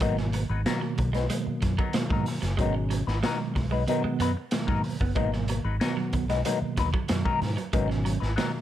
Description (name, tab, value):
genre	funk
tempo	93 BPM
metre	4/4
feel	straight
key	G# minor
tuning	A4 = 440 Hz
part	semi-hollow electric guitar	accompaniment	0.0-8.5 s	F#3 to B4	-31 LUFS	left 7 dB	wah
part	clean electric guitar	riff	0.0-8.5 s	F#3 to B3	-36 LUFS	right 7 dB	spring reverb
part	mellow tine electric piano	stabs	0.0-8.6 s	B2 to C#4	-31 LUFS	right 2 dB	medium stereo tremolo
part	vintage muted fingered electric bass	bass	0.0-8.4 s	F#1 to G#2	-29 LUFS	equal	none
part	raw garage drum kit	drums	0.0-8.5 s	hi-hat, kick drum, snare drum	-30 LUFS	equal	none
room	light reverb, small room ambience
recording	none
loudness	-24 LUFS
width	side -12 dB against mid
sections	0.0-8.6 A section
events	none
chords	0.0 G#m9